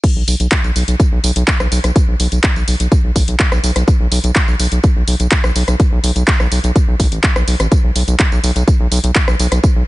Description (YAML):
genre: progressive house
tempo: 125 BPM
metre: 4/4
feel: straight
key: unclear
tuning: A4 = 440 Hz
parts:
  - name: electronic kick drum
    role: drums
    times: 0.0-9.7 s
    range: none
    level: -13 LUFS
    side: equal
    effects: none
  - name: house drum kit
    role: drums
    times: 0.0-9.7 s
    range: crash cymbal, handclaps, hi-hat, rim click, tambourine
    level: -19 LUFS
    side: equal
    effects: none
  - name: round analog bass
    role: bass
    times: 0.2-9.8 s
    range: A1 to B1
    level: -15 LUFS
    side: equal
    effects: sidechain pumping
room: little or no reverb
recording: nothing above 10.3 kHz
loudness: -12 LUFS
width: side -18 dB against mid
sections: 0.0-9.9 A section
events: drop 0.0-9.9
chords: none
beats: | 0.04 0.52 1.00 1.48 | 1.96 2.44 2.92 3.40 | 3.88 4.36 4.84 5.32 | 5.80 6.28 6.76 7.24 | 7.72 8.20 8.68 9.16 | 9.64